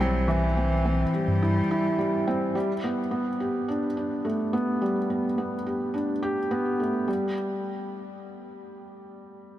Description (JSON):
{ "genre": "piano and strings electronica", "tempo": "106 BPM", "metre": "4/4", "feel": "straight", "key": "G major", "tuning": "A4 = 440 Hz", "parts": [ { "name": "warm cello", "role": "melody", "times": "0.0-2.3 s", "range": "E3 to G3", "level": "-32 LUFS", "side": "left 1 dB", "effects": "none" }, { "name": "felt-muted upright piano", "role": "riff", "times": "0.0-9.6 s", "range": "E3 to G4", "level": "-26 LUFS", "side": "equal", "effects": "digital delay" }, { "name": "round analog bass", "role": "bass", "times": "0.0-1.6 s", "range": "B1 to G2", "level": "-25 LUFS", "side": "equal", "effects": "none" } ], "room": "moderate huge ambient reverb, RT60 6.8 s", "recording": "none", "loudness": "-24 LUFS", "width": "side -13 dB against mid", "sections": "0.0-7.1 A section; 7.1-9.3 B section", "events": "none", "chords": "0.0 C; 2.6 Gadd9; 7.1 N.C.", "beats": "| 0.29 0.85 1.42 1.99 | 2.55 3.12 3.68 4.25 | 4.82 5.38 5.95 6.51 | 7.08 7.65 8.21 8.78" }